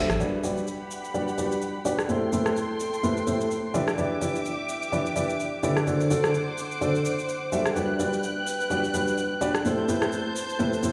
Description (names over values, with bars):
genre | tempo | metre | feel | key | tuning
piano house | 127 BPM | 4/4 | swing 57% on 16ths | G major | A4 = 442 Hz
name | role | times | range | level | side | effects
warm upright piano | riff | 0.0-10.9 s | A2 to E5 | -28 LUFS | equal | low-pass filter, tape echo
punchy analog drum machine | drums | 0.1-10.9 s | cabasa, hi-hat, rim click | -36 LUFS | equal | none
dark studio violin section | sustained chords | 0.2-10.9 s | G4 to G6 | -34 LUFS | equal | low-pass filter
room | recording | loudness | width
wet lush hall reverb, RT60 2.1 s | played on a big sound system in a bare room, stone room reverb, small room ambience | -27 LUFS | mono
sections
0.2-10.9 A section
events
filter sweep on upright piano 0.2-10.9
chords
0.2 Gmaj7; 2.1 Am7; 3.7 Em7; 5.9 D7; 7.8 Gmaj7; 9.6 Am7